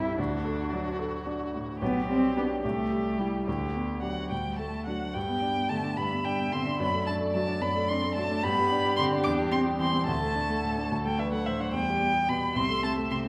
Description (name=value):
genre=quick classical-period movement for piano quartet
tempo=73 BPM (dotted quarters)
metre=6/8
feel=straight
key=G major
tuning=A4 = 442 Hz
part: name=muted violin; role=melody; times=0.0-13.2 s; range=F#4 to D6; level=-34 LUFS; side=equal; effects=none
part: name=muted cello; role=second line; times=0.0-13.3 s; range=D3 to E4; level=-35 LUFS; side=equal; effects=none
part: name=clear concert grand piano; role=accompaniment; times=0.0-13.3 s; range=B1 to A4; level=-32 LUFS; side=equal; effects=none
part: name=muted violin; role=second line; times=6.0-13.3 s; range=G4 to E5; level=-37 LUFS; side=equal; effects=none
room=wet scoring stage reverb, RT60 1.5 s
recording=none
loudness=-28 LUFS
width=mono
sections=0.0-5.2 A section; 5.2-13.3 B section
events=none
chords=0.2 D; 1.8 G/B; 2.6 C; 3.5 G/D; 4.3 D; 5.2 G; 6.8 D/F#; 8.4 G; 9.2 C/E; 10.1 D5; 11.7 Em; 12.6 Am/C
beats=| 0.18 1.00 | 1.81 2.63 | 3.47 4.31 | 5.15 5.98 | 6.80 7.62 | 8.43 9.24 | 10.07 10.91 | 11.74 12.56